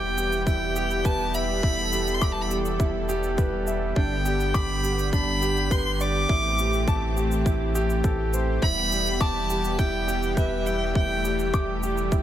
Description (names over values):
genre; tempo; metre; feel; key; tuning
piano and strings electronica; 103 BPM; 4/4; straight; E minor; A4 = 438 Hz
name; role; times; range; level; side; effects
warm violin; melody; 0.0-11.5 s; E5 to D6; -28 LUFS; equal; tape echo
lush unison pad; sustained chords; 0.0-12.2 s; D3 to A4; -31 LUFS; left 1 dB; chorus, sidechain pumping
warm upright piano; riff; 0.0-12.2 s; D4 to D6; -28 LUFS; right 1 dB; tape echo
warm sub bass; bass; 0.0-12.2 s; E1 to A1; -29 LUFS; equal; sidechain pumping
shaker; drums; 0.2-12.2 s; none; -39 LUFS; right 2 dB; none
electronic kick drum; drums; 0.5-12.2 s; none; -25 LUFS; equal; none
room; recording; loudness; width
digital ambience; none; -22 LUFS; side -11 dB against mid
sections
0.0-12.2 A section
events
none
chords
0.0 Em; 4.0 G; 6.3 Am7; 8.6 Em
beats
0.47 1.05 | 1.63 2.22 2.80 3.38 | 3.96 4.55 5.13 5.71 | 6.29 6.88 7.46 8.04 | 8.62 9.21 9.79 10.37 | 10.96 11.54 12.12